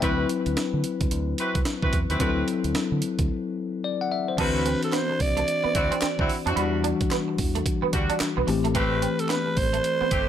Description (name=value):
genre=R&B, new jack swing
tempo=110 BPM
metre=4/4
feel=swing 62% on 16ths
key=unclear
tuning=A4 = 440 Hz
part: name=bell-like tine electric piano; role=accompaniment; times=0.0-10.3 s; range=E3 to G5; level=-27 LUFS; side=left 6 dB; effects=none
part: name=warm horn section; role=stabs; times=0.0-10.3 s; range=G3 to B4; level=-30 LUFS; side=right 1 dB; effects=tube saturation, tape echo
part: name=deep dub fingered electric bass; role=bass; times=0.0-10.2 s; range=G1 to D3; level=-28 LUFS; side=right 1 dB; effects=none
part: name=breakbeat sampler-style drum kit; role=drums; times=0.0-10.3 s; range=crash cymbal, hi-hat, kick drum, snare drum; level=-28 LUFS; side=right 1 dB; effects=none
part: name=raspy alto saxophone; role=melody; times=4.4-10.3 s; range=A4 to D5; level=-26 LUFS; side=right 2 dB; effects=tape echo
part: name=clean electric guitar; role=riff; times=4.4-10.1 s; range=A3 to E4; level=-30 LUFS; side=right 8 dB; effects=ensemble chorus
part: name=group handclap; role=percussion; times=4.9-9.4 s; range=none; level=-36 LUFS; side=left 1 dB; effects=none
room=little or no reverb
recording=none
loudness=-22 LUFS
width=side -10 dB against mid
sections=0.0-4.4 A section; 4.4-10.3 B section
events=break 3.3-4.4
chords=0.0 D13; 4.4 D9; 6.6 Em9; 8.5 Am7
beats=| 0.02 0.57 1.11 1.66 | 2.21 2.75 3.30 3.84 | 4.39 4.93 5.48 6.02 | 6.57 7.11 7.66 8.21 | 8.75 9.30 9.84